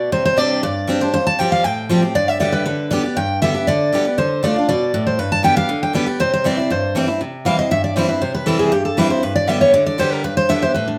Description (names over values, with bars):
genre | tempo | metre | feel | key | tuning
bluegrass | 237 BPM | 4/4 | straight | C major | A4 = 439 Hz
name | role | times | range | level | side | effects
picked steel-string acoustic guitar | melody | 0.0-11.0 s | D4 to A5 | -20 LUFS | equal | slapback echo
picked steel-string acoustic guitar | accompaniment | 0.0-11.0 s | F2 to G4 | -22 LUFS | equal | none
room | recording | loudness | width
moderate large studio reverb, RT60 1.0 s | none | -18 LUFS | mono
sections
0.0-7.2 A section; 7.2-11.0 B section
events
steel-string acoustic guitar solo 7.2-11.0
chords
0.1 Csus2; 1.1 Fadd9; 2.2 G; 4.2 Dm; 5.2 G; 6.2 C; 9.2 G